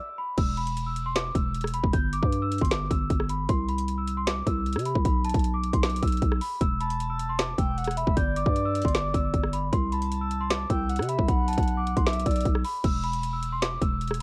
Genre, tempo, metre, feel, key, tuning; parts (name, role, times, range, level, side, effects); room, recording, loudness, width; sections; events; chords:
hip hop, trap; 154 BPM; 4/4; half-time; E minor; A4 = 439 Hz
large celesta; melody; 0.0-14.2 s; A5 to G6; -33 LUFS; equal; low-pass filter, digital delay
growling 808-style bass; bass; 0.4-14.2 s; E1 to C3; -31 LUFS; equal
trap drum kit; drums; 0.4-14.2 s; crash cymbal, hi-hat, kick drum, rim click, snare drum; -29 LUFS; equal
breathy flute-like synth lead; second line; 6.8-12.4 s; D5 to A5; -37 LUFS; equal; chorus, digital delay
digital ambience; worn, warbling old tape, cassette tape, warbly pitch drift; -26 LUFS; mono
0.4-12.8 A section; 12.8-14.2 A section
break 0.0-0.4
0.4 E5; 1.9 G5; 3.5 C; 5.1 Bmadd11; 6.6 Esus4; 8.2 G5; 9.7 C; 11.3 B5; 12.8 E5